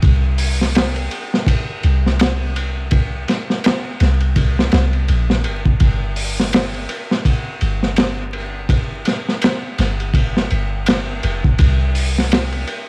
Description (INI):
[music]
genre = trip hop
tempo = 83 BPM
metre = 4/4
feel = swing 58% on 16ths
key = unclear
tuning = A4 = 440 Hz
[part]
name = soft 808-style bass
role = bass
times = 0.0-12.6 s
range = F1 to C2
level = -18 LUFS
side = equal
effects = tube saturation
[part]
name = crunchy breakbeat drum kit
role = drums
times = 0.0-12.9 s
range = hi-hat, kick drum, ride cymbal, snare drum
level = -17 LUFS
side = equal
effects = cassette tape
[sound]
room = little or no reverb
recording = home recording on cassette, vinyl crackle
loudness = -15 LUFS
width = side -36 dB against mid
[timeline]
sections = 0.0-12.9 A section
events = none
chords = none